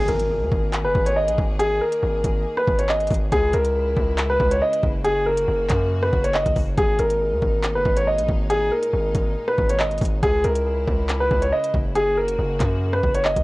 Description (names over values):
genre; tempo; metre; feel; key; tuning
hip hop, drill; 139 BPM; 4/4; half-time; G# minor; A4 = 440 Hz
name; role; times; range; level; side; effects
warm concert grand piano; melody; 0.0-13.4 s; G#4 to D#5; -21 LUFS; equal; cassette tape
bright symphonic string section; sustained chords; 0.0-13.4 s; A#2 to G#4; -35 LUFS; equal; cassette tape
distorted 808-style bass; bass; 0.0-13.4 s; F#1 to F#2; -24 LUFS; equal; distortion
impact; sound effects; 0.0-1.6 s; none; -35 LUFS; equal; none
drill drum kit; drums; 0.1-13.4 s; handclaps, hi-hat, kick drum, rim click; -24 LUFS; equal; cassette tape
room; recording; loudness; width
little or no reverb; home recording on cassette; -18 LUFS; side -21 dB against mid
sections
0.0-13.4 A section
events
impact 0.0-1.6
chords
0.0 G#sus2; 3.3 C#m; 5.0 F#; 6.8 G#sus2; 10.2 C#m; 12.0 F#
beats
0.30 0.73 1.16 | 1.59 2.03 2.46 2.89 | 3.32 3.75 4.18 4.62 | 5.05 5.48 5.91 6.34 | 6.77 7.21 7.64 8.07 | 8.50 8.93 9.36 9.80 | 10.23 10.66 11.09 11.52 | 11.95 12.39 12.82 13.25